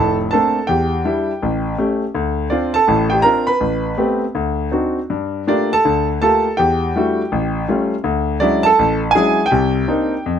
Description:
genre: solo jazz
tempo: 164 BPM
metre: 4/4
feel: swing 64% on 8ths, rubato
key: unclear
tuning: A4 = 439 Hz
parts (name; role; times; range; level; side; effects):
- clear concert grand piano; solo; 0.0-10.4 s; F1 to Cb6; -15 LUFS; equal; none
room: light reverb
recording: none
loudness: -15 LUFS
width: side -8 dB against mid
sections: 0.0-10.4 A section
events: none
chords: 0.0 Bbmaj9; 0.7 Em7; 1.4 A7; 2.1 Dm7; 3.6 Am9; 4.4 D7b9; 5.1 Gm9; 6.6 Em11; 7.3 Aaug7; 8.1 Dmaj9#11; 9.5 Cm9

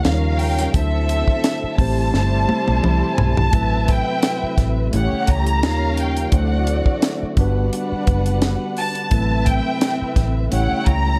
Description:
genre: lush 1970s-style soul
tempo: 86 BPM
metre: 4/4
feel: swing 54% on 16ths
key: A dorian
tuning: A4 = 441 Hz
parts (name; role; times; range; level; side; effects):
- warm studio violin section; melody; 0.0-11.2 s; E5 to Bb5; -27 LUFS; equal; none
- dark studio string section; second line; 0.0-11.2 s; G3 to G5; -29 LUFS; equal; none
- tine electric piano; accompaniment; 0.0-11.2 s; F#3 to C#5; -29 LUFS; equal; overdrive
- mellow tonewheel organ; sustained chords; 0.0-11.2 s; C3 to B4; -31 LUFS; equal; slow rotary speaker, chorus vibrato
- tight funk drum kit; drums; 0.0-11.0 s; hi-hat, kick drum, snare drum, toms; -22 LUFS; equal; none
- vintage muted fingered electric bass; bass; 0.1-11.2 s; F#1 to D#2; -22 LUFS; equal; none
room: studio reverb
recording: dark, warm production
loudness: -19 LUFS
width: mono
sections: 0.0-3.5 A section; 3.5-11.2 A section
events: drum fill 2.1-3.5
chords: 0.0 D#9; 0.7 D9; 1.8 Am9; 3.5 Am69; 4.9 A7; 5.6 D#9; 6.3 D9; 7.4 Gmaj7; 9.1 Am69; 10.5 A7

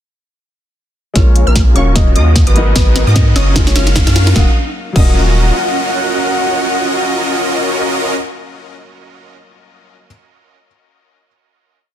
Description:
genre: future bass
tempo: 150 BPM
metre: 4/4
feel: swing 56% on 16ths, half-time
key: Eb minor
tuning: A4 = 440 Hz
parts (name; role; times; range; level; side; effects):
- felt-muted upright piano; accompaniment; 1.1-10.1 s; Gb3 to F5; -23 LUFS; left 4 dB; sidechain pumping, ping-pong delay
- soft octave-layered synth lead; melody; 1.2-8.1 s; Bb4 to Gb5; -21 LUFS; left 2 dB; chorus, phaser, sidechain pumping, tape echo
- wide unison pluck; arpeggios; 1.2-8.1 s; Db6 to F6; -26 LUFS; equal; sidechain pumping, ping-pong delay
- supersaw chords; riff; 1.2-8.1 s; Cb4 to F5; -17 LUFS; right 1 dB; wide subtle chorus, sidechain pumping, low-pass filter
- saturated sub bass; bass; 1.2-5.5 s; Eb1 to Ab2; -12 LUFS; equal; sidechain pumping
- electronic kick drum; drums; 1.2-5.1 s; none; -12 LUFS; equal; studio reverb
- trap drum kit; drums; 1.2-5.1 s; crash cymbal, hi-hat, snare drum; -18 LUFS; equal; studio reverb
- riser; sound effects; 2.5-4.4 s; none; -25 LUFS; left 1 dB; none
room: little or no reverb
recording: dense, heavily limited modern master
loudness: -10 LUFS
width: side -11 dB against mid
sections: 1.2-4.4 build; 4.4-7.6 final chord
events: build-up 1.2-4.4; drum fill 1.2-4.4; filter sweep on supersaw synth 1.2-4.4; riser 2.5-4.4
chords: 1.2 Bbm7; 1.8 Ebm9; 2.6 Abm9; 3.6 Gbmaj7; 4.4 Ebm9

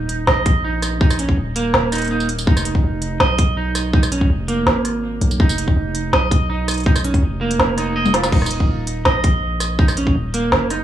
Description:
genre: half-time drum and bass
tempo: 164 BPM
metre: 4/4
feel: half-time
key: unclear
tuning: A4 = 441 Hz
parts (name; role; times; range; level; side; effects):
- electric guitar at the edge of break-up; arpeggios; 0.0-10.8 s; Bb3 to Eb5; -22 LUFS; right 2 dB; tape echo
- long sustained 808-style bass; bass; 0.0-10.8 s; Eb1 to Cb2; -21 LUFS; equal; none
- organic electronic drum kit; drums; 0.1-10.8 s; crash cymbal, hi-hat, rim click, snare drum, tambourine, toms; -20 LUFS; right 1 dB; none
- electronic kick drum; drums; 0.5-10.1 s; none; -15 LUFS; equal; none
room: light reverb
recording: dry, gritty hardware recording, small room ambience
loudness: -15 LUFS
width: side -11 dB against mid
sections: 0.0-10.8 A section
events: drum fill 8.1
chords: 0.0 Eb5; 2.5 F(b5, no3); 8.3 Ebm

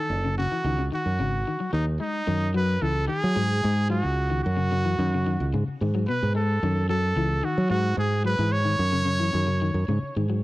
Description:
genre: afrobeat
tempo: 110 BPM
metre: 4/4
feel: straight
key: F# dorian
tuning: A4 = 439 Hz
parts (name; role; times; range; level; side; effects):
- bright trumpet; melody; 0.0-10.2 s; D#4 to C#5; -28 LUFS; right 1 dB; cassette tape, tape echo
- electric guitar at the edge of break-up; arpeggios; 0.0-10.4 s; B2 to G#3; -30 LUFS; left 4 dB; cassette tape
- fingered electric bass; bass; 0.1-10.4 s; F#1 to F#3; -24 LUFS; right 1 dB; none
room: small room ambience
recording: home recording on cassette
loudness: -22 LUFS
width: side -18 dB against mid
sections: 0.0-2.3 A section; 2.3-10.4 B section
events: none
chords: 0.1 F#5; 1.2 G#5; 2.3 F#5; 3.4 G#5; 4.4 F#5; 5.5 G#m; 6.6 F#m6; 7.7 G#5; 8.8 F#5; 9.9 G#5

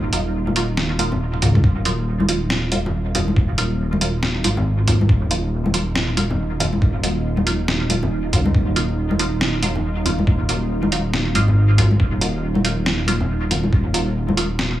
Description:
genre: deep dubstep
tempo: 139 BPM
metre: 4/4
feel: swing 60% on 16ths, half-time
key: Eb minor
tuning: A4 = 438 Hz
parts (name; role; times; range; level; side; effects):
- deep dark ambient pad; sustained chords; 0.0-14.8 s; Eb4; -30 LUFS; right 2 dB; chorus, built-in reverb
- dark detuned saw bass; bass; 0.0-14.8 s; Eb1 to Db2; -21 LUFS; equal; none
- filtered dub chord stab; stabs; 0.1-14.5 s; Gb3 to F4; -26 LUFS; right 2 dB; phaser, dub echo
- trip hop sampler-style drum kit; drums; 0.1-14.7 s; hi-hat, snare drum, toms; -22 LUFS; equal; overdrive
- congas; percussion; 0.5-14.4 s; none; -25 LUFS; left 2 dB; dub echo
- electronic kick drum; drums; 1.4-13.8 s; none; -19 LUFS; equal; overdrive
room: light reverb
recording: small room ambience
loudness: -17 LUFS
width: side -13 dB against mid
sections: 0.0-14.8 A section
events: drum fill 1.3-1.6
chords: 0.0 Ebmadd9

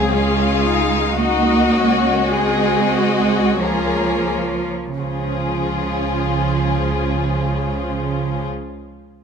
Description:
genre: classical, slow romantic movement for string orchestra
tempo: 42-56 BPM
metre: 3/4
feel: rubato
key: Db major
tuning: A4 = 439 Hz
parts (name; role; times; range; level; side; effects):
- dark studio violin section; melody; 0.0-8.5 s; F4 to Ab4; -23 LUFS; left 6 dB; none
- warm chamber violin section; second line; 0.0-8.5 s; F4 to F5; -24 LUFS; left 5 dB; none
- rich studio viola section; accompaniment; 0.0-8.5 s; F3 to Ab4; -23 LUFS; equal; none
- warm studio cello section; bass; 0.0-8.4 s; Db3 to Bb3; -21 LUFS; right 5 dB; none
- warm studio double bass section; bass; 0.0-8.5 s; Db2; -24 LUFS; right 2 dB; none
room: moderate concert hall reverb, RT60 1.7 s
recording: close, detailed microphones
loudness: -16 LUFS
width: side -6 dB against mid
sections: 0.0-5.0 A section; 5.0-8.8 B section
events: slowing down 0.0-5.0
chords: 0.0 Ab7/Db; 5.0 Db

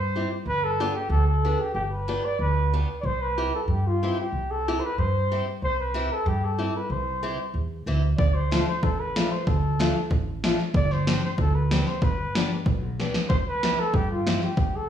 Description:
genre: alpine folk, alpine dance band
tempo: 94 BPM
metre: 2/4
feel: straight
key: C major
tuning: A4 = 435 Hz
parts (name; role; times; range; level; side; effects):
- warm flugelhorn; melody; 0.0-14.9 s; F4 to D5; -28 LUFS; equal; slapback echo
- upright bass; bass; 0.0-14.9 s; G1 to G2; -26 LUFS; right 1 dB; none
- picked old ladder-braced acoustic guitar; accompaniment; 0.2-14.4 s; A3 to G4; -30 LUFS; left 2 dB; none
- punchy analog drum machine; drums; 8.2-14.7 s; kick drum, snare drum; -24 LUFS; equal; none
room: light reverb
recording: played on a big sound system in a bare room, stone room reverb, studio ambience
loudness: -22 LUFS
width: side -9 dB against mid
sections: 0.0-14.9 A section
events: drum fill 13.0-13.3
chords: 0.5 G; 3.0 C; 8.2 Dm; 10.7 Gsus4; 12.0 G; 13.3 C

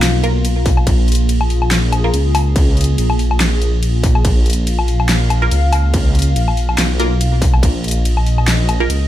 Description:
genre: deep dubstep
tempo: 142 BPM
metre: 4/4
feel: swing 55% on 16ths, half-time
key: Bb phrygian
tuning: A4 = 440 Hz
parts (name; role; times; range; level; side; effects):
- dark analog pad; sustained chords; 0.0-9.1 s; Bb3 to F5; -23 LUFS; left 1 dB; chorus, phaser
- dark detuned saw bass; bass; 0.0-9.1 s; Bb1 to Db2; -15 LUFS; equal; none
- dubstep drum kit; drums; 0.0-9.0 s; crash cymbal, handclaps, hi-hat, snare drum, woodblock; -20 LUFS; left 1 dB; studio reverb
- filtered dub chord stab; stabs; 0.2-2.1, 5.4-8.9 s; Bb3 to Bb4; -23 LUFS; right 2 dB; phaser, dub echo
- electronic kick drum; drums; 0.7-7.7 s; none; -15 LUFS; equal; distortion, studio reverb
room: digital ambience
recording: none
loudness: -12 LUFS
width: side -13 dB against mid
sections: 0.0-9.1 A section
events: none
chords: 0.0 Bb5

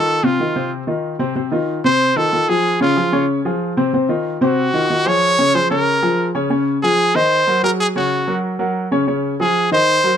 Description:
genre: latin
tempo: 187 BPM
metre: 4/4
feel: straight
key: unclear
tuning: A4 = 440 Hz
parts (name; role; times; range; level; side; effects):
- bright trumpet; melody; 0.0-10.2 s; F4 to Db5; -16 LUFS; right 1 dB; none
- warm baby grand piano; accompaniment; 0.0-10.2 s; C3 to Eb5; -18 LUFS; left 1 dB; none
room: light reverb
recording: close, detailed microphones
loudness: -15 LUFS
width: side -8 dB against mid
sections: 0.0-6.5 A section; 6.5-10.2 B section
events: none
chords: 0.1 F7; 2.6 Dbmaj7; 3.9 F5; 5.2 Db; 7.1 Ebm; 7.8 Gbsus2; 8.4 Gb; 9.1 Db

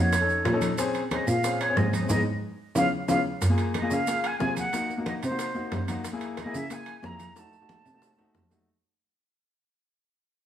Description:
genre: Afro-Cuban jazz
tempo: 182 BPM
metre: 4/4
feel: straight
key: unclear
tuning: A4 = 440 Hz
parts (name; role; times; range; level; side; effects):
- mellow concert flute; melody; 0.0-8.5 s; C5 to Bb5; -29 LUFS; right 1 dB; plate reverb
- warm grand piano; accompaniment; 0.0-8.7 s; Ab3 to A4; -31 LUFS; left 3 dB; none
- rich cello; bass; 0.0-8.6 s; F2 to Db3; -28 LUFS; right 1 dB; none
- bongos; percussion; 0.1-8.7 s; none; -38 LUFS; left 4 dB; none
- congas; percussion; 0.1-8.7 s; none; -36 LUFS; left 2 dB; none
- maracas; percussion; 0.1-8.7 s; none; -41 LUFS; right 5 dB; none
- timbales; percussion; 0.1-8.6 s; none; -37 LUFS; right 4 dB; none
room: moderate large studio reverb, RT60 1.0 s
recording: heard from further back in the room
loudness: -24 LUFS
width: side -10 dB against mid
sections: 0.0-3.4 A section; 3.4-8.7 B section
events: band accent 2.1-3.4; drum fill 2.8-3.4, 7.4-8.7; fade-out 3.4-8.7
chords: 0.1 Faug7; 0.8 Bbm9; 2.1 Abm; 2.8 Db7; 3.4 Gbmaj7; 4.7 Cm7b5; 6.0 Dbm6; 7.4 F7b9

